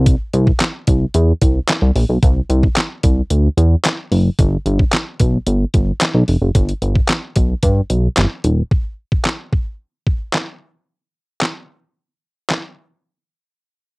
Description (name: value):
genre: dance-pop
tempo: 111 BPM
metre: 4/4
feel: straight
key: unclear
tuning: A4 = 440 Hz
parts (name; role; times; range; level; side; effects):
- chorused synth bass; bass; 0.0-8.6 s; D#1 to G2; -14 LUFS; equal; sidechain pumping
- detuned 8-bit digital drum machine; drums; 0.1-12.6 s; handclaps, hi-hat, kick drum, snare drum; -16 LUFS; equal; cassette tape
room: little or no reverb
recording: home recording on cassette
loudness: -14 LUFS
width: side -26 dB against mid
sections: 0.0-8.7 A section; 8.7-13.0 B section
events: none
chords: none